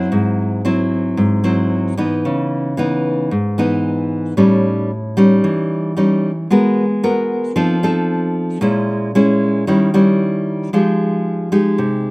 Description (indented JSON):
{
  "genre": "bossa nova",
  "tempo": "113 BPM",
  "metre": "4/4",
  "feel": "straight",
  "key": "G# minor",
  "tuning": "A4 = 437 Hz",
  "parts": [
    { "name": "nylon-string guitar", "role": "solo", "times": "0.0-12.1 s", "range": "G#2 to A#4", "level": "-14 LUFS", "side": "equal", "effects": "slapback echo" }
  ],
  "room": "little or no reverb",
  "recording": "recorded outdoors, with no room sound",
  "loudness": "-14 LUFS",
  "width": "side -25 dB against mid",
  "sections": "0.0-10.7 A section; 10.7-12.1 B section",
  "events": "none",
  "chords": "0.1 G#7alt; 2.2 C#m9; 4.4 A7#11; 6.5 G#m9; 7.5 F7; 8.6 A#m7b5; 9.7 D#7b9; 10.7 Fm9"
}